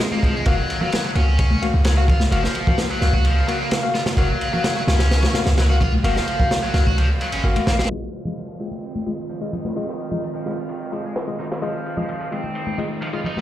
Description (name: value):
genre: breakbeat, breaks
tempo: 129 BPM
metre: 4/4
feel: straight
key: F phrygian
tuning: A4 = 439 Hz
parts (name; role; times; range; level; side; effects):
- warbly tape-like pad; sustained chords; 0.0-13.4 s; Db3 to F5; -30 LUFS; right 1 dB; chorus, built-in reverb, sidechain pumping
- tine electric piano; stabs; 0.0-13.2 s; Ab3 to F5; -27 LUFS; left 3 dB; fast stereo tremolo, dub echo
- crunchy breakbeat drum kit; drums; 0.0-13.4 s; kick drum, ride cymbal, snare drum; -23 LUFS; equal; high-pass filter on kick, high-pass filter on cymbals, high-pass filter on snare, high-pass filter on room
- overdriven electric guitar; riff; 0.1-13.4 s; Eb3 to Gb4; -27 LUFS; equal; tube saturation, low-pass filter, dub echo
- congas; percussion; 0.1-13.4 s; none; -29 LUFS; left 2 dB; none
- warm 808-style bass; bass; 0.5-7.8 s; Gb1 to Db2; -18 LUFS; equal; none
- downlifter; sound effects; 8.2-11.6 s; none; -50 LUFS; right 2 dB; none
room: light reverb, small room ambience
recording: played on a big sound system in a bare room, stone room reverb, low-pass filter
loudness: -18 LUFS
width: side -13 dB against mid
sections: 0.0-7.9 A section; 7.9-13.4 B section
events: kick drops out 7.0-7.9; filter sweep 7.9-13.4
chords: 0.5 Gbmaj7; 7.9 Fm7